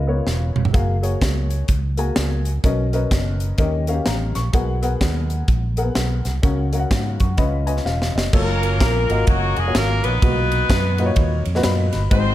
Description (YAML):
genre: uptempo gospel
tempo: 126 BPM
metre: 4/4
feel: swing 62% on 8ths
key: F# major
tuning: A4 = 440 Hz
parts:
  - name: dark upright piano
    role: accompaniment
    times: 0.0-12.3 s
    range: G#2 to C#6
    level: -24 LUFS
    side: left 2 dB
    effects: none
  - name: fingered electric bass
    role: bass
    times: 0.0-12.3 s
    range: E1 to G#2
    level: -21 LUFS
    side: equal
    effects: none
  - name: crisp fusion drum kit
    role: drums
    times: 0.3-12.2 s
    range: crash cymbal, hi-hat, kick drum, ride cymbal, snare drum, toms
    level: -21 LUFS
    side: equal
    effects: none
  - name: warm horn section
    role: melody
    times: 8.3-12.3 s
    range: F#3 to B#4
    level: -22 LUFS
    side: left 1 dB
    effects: slapback echo
room: light reverb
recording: none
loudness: -17 LUFS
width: side -14 dB against mid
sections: 0.0-8.3 A section; 8.3-12.3 B section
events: drum fill 0.3-0.7, 7.9-8.3; upright piano fill 6.9-8.3, 11.4-12.1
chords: 0.0 C#13; 0.7 F#add9; 2.6 Bmaj9; 3.6 D#7; 4.5 G#m9/B; 6.4 F#/C#; 7.4 C#9; 8.3 F#maj7; 10.2 Bmaj7